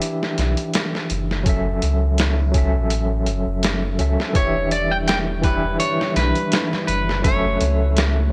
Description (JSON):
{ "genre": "trip hop", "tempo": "83 BPM", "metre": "4/4", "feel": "swing 54% on 16ths", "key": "F# phrygian", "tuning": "A4 = 439 Hz", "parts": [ { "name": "overdriven tine electric piano", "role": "accompaniment", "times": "0.0-8.3 s", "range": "E3 to E5", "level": "-26 LUFS", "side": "equal", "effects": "fast tremolo" }, { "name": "trip hop sampler-style drum kit", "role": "drums", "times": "0.0-8.2 s", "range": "hi-hat, kick drum, snare drum", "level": "-25 LUFS", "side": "equal", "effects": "none" }, { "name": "warm sub bass", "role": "bass", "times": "0.4-8.3 s", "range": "E1 to C#2", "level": "-24 LUFS", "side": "equal", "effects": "none" }, { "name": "string machine, cellos", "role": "sustained chords", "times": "4.3-8.3 s", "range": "G3 to E5", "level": "-33 LUFS", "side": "equal", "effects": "ensemble chorus" }, { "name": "clean electric guitar", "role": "melody", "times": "4.4-8.3 s", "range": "B4 to G5", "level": "-25 LUFS", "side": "equal", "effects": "tape echo" } ], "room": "light reverb", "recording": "bright 1980s-style digital production", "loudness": "-20 LUFS", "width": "mono", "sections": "0.0-8.3 A section", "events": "none", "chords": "0.0 Em7; 1.5 F#m7; 4.4 Em7; 7.2 F#m7" }